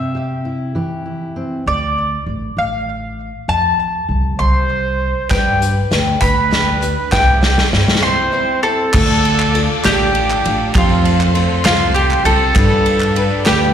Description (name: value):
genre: indie folk with a building arrangement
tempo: 66 BPM (dotted quarters)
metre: 6/8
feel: straight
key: unclear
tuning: A4 = 440 Hz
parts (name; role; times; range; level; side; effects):
- mandolin; melody; 0.0-13.7 s; F4 to C6; -19 LUFS; equal; slapback echo, digital delay
- fingerpicked steel-string acoustic guitar; accompaniment; 0.0-1.6 s; C3 to G4; -22 LUFS; equal; slapback echo
- upright bass; bass; 1.7-13.7 s; A1 to G2; -17 LUFS; right 1 dB; none
- warm trumpet; second line; 4.4-13.7 s; F4 to C5; -21 LUFS; right 2 dB; slapback echo
- picked acoustic archtop guitar; accompaniment; 5.3-13.7 s; C3 to C5; -22 LUFS; left 6 dB; slapback echo
- unplugged drum kit; drums; 5.3-13.6 s; crash cymbal, hi-hat, kick drum, ride cymbal, snare drum; -18 LUFS; equal; none
- group handclap; percussion; 5.3-13.6 s; none; -24 LUFS; right 3 dB; none
- dark studio string section; sustained chords; 8.9-13.7 s; G4 to D6; -25 LUFS; equal; none
room: little or no reverb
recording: live gig heard through the venue's PA, recital hall reverb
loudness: -13 LUFS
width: side -9 dB against mid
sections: 0.0-1.7 A section; 1.7-8.9 B section; 8.9-13.7 C section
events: build-up 1.7-8.9; drum fill 5.3-8.0; break 8.0-8.9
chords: 0.0 C; 1.7 Dm; 3.5 F; 5.3 G; 7.1 C; 8.9 Dm; 10.8 F; 12.6 G7